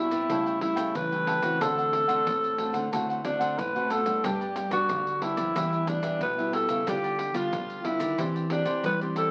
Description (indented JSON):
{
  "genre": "samba and choro",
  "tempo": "91 BPM",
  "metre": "4/4",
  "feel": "straight",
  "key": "G major",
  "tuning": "A4 = 439 Hz",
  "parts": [
    { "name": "breathy alto saxophone", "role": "melody", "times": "0.0-9.3 s", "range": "D4 to B4", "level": "-29 LUFS", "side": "equal", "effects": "none" },
    { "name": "cavaquinho", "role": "accompaniment", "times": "0.0-9.3 s", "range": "D4 to G5", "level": "-36 LUFS", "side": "equal", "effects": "none" },
    { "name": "nylon-string guitar", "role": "accompaniment", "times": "0.0-9.3 s", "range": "G2 to G4", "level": "-35 LUFS", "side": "equal", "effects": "none" },
    { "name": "nylon-string guitar", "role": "bass", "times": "0.0-9.3 s", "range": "E2 to G3", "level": "-39 LUFS", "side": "equal", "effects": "none" },
    { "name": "maracas, pandeiro and surdo", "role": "percussion", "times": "0.1-9.3 s", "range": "none", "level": "-39 LUFS", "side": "equal", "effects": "none" }
  ],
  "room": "wet studio reverb, RT60 0.6 s",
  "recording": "very old 78 rpm record, vinyl crackle",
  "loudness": "-27 LUFS",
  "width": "mono",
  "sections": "0.0-9.3 A section",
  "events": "none",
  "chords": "0.3 A7/C#; 1.6 D7; 4.2 G; 5.6 Em; 6.9 G7/D; 8.2 Cadd9/E",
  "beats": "0.30 0.95 | 1.61 2.27 2.93 3.58 | 4.24 4.90 5.56 6.22 | 6.87 7.53 8.19 8.85"
}